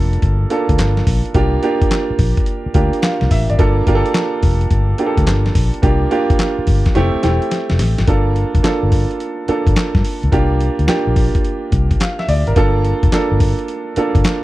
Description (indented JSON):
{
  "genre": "R&B, new jack swing",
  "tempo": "107 BPM",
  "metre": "4/4",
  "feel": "swing 67% on 16ths",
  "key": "G dorian",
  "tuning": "A4 = 441 Hz",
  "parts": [
    { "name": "warm concert grand piano", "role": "accompaniment", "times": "0.0-14.4 s", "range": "A3 to F5", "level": "-18 LUFS", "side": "right 2 dB", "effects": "none" },
    { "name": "vintage muted fingered electric bass", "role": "bass", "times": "0.0-14.2 s", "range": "E1 to G2", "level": "-16 LUFS", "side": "left 1 dB", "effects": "none" },
    { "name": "dusty soul sampler-style drum kit", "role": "drums", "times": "0.1-14.4 s", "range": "handclaps, hi-hat, kick drum, snare drum", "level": "-16 LUFS", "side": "left 1 dB", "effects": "none" }
  ],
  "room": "little or no reverb",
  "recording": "dry, close 1970s-style studio recording",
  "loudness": "-13 LUFS",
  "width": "side -17 dB against mid",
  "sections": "0.0-8.1 A section; 8.1-14.4 B section",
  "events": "drum fill 7.0-8.1; grand piano fill 11.7-12.6",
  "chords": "0.0 Gm9; 1.3 C9sus4; 3.6 Gm9; 5.8 C9sus4; 7.0 Fmaj7; 8.1 Gm9; 10.3 C9sus4; 12.6 Gm9"
}